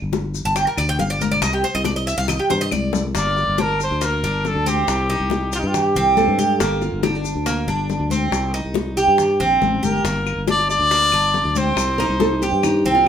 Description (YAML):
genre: latin, Cuban son and guajira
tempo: 139 BPM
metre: 4/4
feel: straight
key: G minor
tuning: A4 = 443 Hz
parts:
  - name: Cuban tres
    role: arpeggios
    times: 0.0-13.1 s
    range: Bb3 to A5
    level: -21 LUFS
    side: right 2 dB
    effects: none
  - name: sustaining fretless electric bass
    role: bass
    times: 0.0-13.1 s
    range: G1 to G2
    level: -23 LUFS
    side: left 1 dB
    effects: none
  - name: bongos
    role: percussion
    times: 0.1-13.1 s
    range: none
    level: -27 LUFS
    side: left 6 dB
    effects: none
  - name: congas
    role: percussion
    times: 0.1-13.1 s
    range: none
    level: -27 LUFS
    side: left 6 dB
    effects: none
  - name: maracas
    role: percussion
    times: 0.1-13.1 s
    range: none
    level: -34 LUFS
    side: left 7 dB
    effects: none
  - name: claves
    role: percussion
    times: 0.8-2.9, 10.3-12.8 s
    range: none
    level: -30 LUFS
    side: left 7 dB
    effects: none
  - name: warm trumpet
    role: melody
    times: 3.2-6.4, 9.9-12.9 s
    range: Eb4 to D5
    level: -20 LUFS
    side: left 2 dB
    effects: none
  - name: nylon-string guitar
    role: second line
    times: 6.2-8.0, 12.0-13.1 s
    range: D4 to Bb4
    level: -23 LUFS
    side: equal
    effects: none
room: wet studio reverb, RT60 0.6 s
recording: band playing live in one room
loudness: -17 LUFS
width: side -9 dB against mid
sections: 0.0-3.2 A section; 3.2-13.1 B section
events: Cuban tres solo 0.0-3.2; drum fill 2.3-3.2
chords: 0.0 G5; 1.4 C5; 3.2 Gm; 4.9 Cm; 6.6 Gm; 8.3 Cm; 10.1 Gm; 11.8 Cm